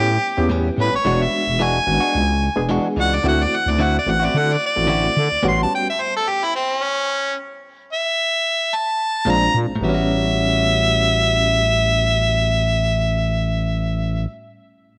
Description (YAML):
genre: blues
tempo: 110 BPM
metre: 4/4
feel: swing 54% on 16ths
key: A mixolydian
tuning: A4 = 441 Hz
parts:
  - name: bright harmonica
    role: melody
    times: 0.0-14.3 s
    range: C4 to C6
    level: -22 LUFS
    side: equal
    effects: overdrive
  - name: reed electric piano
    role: accompaniment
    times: 0.0-5.9, 9.3-14.3 s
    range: G3 to G#4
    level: -28 LUFS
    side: equal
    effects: overdrive, fast tremolo
  - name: growling FM bass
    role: bass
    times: 0.0-5.7, 9.3-14.3 s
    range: E1 to D3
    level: -23 LUFS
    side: equal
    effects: tube saturation
  - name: direct-recorded clean electric guitar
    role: stabs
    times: 0.5-5.6, 9.3-14.4 s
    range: A2 to F#4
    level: -28 LUFS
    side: equal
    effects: none
room: moderate plate reverb, RT60 2.6 s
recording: none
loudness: -19 LUFS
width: mono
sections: 0.0-9.8 A section; 9.8-14.2 B section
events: stop 5.4-9.3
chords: 0.0 A9; 1.1 E9; 3.2 D9; 5.4 A13; 9.3 Bb9; 9.8 A13